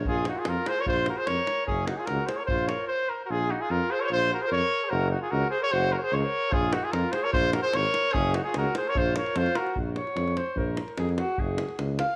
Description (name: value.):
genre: balkan folk, Balkan brass band.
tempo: 148 BPM.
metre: 2/4.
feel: straight.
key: Bb minor.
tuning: A4 = 442 Hz.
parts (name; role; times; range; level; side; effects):
mellow tuba; bass; 0.0-12.0 s; Gb1 to F2; -31 LUFS; equal; none.
warm trumpet; melody; 0.1-9.8 s; Gb4 to Db5; -29 LUFS; equal; none.
clear flugelhorn; second line; 0.1-12.2 s; Db4 to F5; -34 LUFS; equal; none.
davul; percussion; 0.1-2.8, 6.5-12.1 s; none; -35 LUFS; equal; none.
room: moderate echo chamber reverb, RT60 1.8 s, small room reverb.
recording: none.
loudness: -27 LUFS.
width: mono.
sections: 0.0-3.3 A section; 3.3-9.8 A section; 9.8-12.2 B section.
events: stop 2.9-3.3; flugelhorn solo 9.8-12.2.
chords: 0.1 Bbm; 1.7 Gb5; 2.5 Bbmadd9; 3.3 Bb5; 4.9 Gb; 6.5 Bbm; 8.1 Gb5; 9.0 Bb5; 11.4 Gb5.